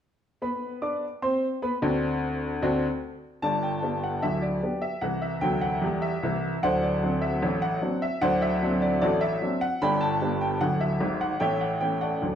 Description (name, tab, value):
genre	ragtime piano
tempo	75 BPM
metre	2/4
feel	straight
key	G major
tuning	A4 = 440 Hz
part	warm upright piano	solo	0.4-12.4 s	D1 to D6	-24 LUFS	equal	none
room	wet large studio reverb, RT60 1.1 s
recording	band playing live in one room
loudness	-24 LUFS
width	side -9 dB against mid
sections	0.2-3.4 A section; 3.4-12.4 B section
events	none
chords	0.2 Bm; 1.8 D7; 3.4 G; 5.0 C; 6.6 D7; 9.8 G; 11.4 A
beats	| 0.23 1.03 | 1.83 2.62 | 3.43 4.23 | 5.03 5.83 | 6.63 7.43 | 8.23 9.02 | 9.82 10.61 | 11.41 12.21